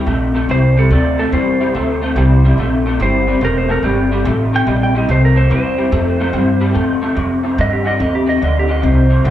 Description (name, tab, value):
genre	electric blues shuffle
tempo	144 BPM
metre	4/4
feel	swing 66% on 8ths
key	unclear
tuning	A4 = 441 Hz
part	electric guitar through a small old amp	riff	0.0-9.3 s	F2 to A3	-16 LUFS	left 2 dB	ensemble chorus
part	upright bass	bass	0.0-9.3 s	E1 to G2	-15 LUFS	equal	none
part	clean lap steel guitar	melody	0.5-9.2 s	G4 to G5	-19 LUFS	right 2 dB	slapback echo
room	light reverb, studio reverb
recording	live gig heard through the venue's PA, club reverb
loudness	-12 LUFS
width	side -12 dB against mid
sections	0.5-9.3 A section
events	electric slide guitar solo 0.5-9.3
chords	0.5 C9; 7.2 F7sus2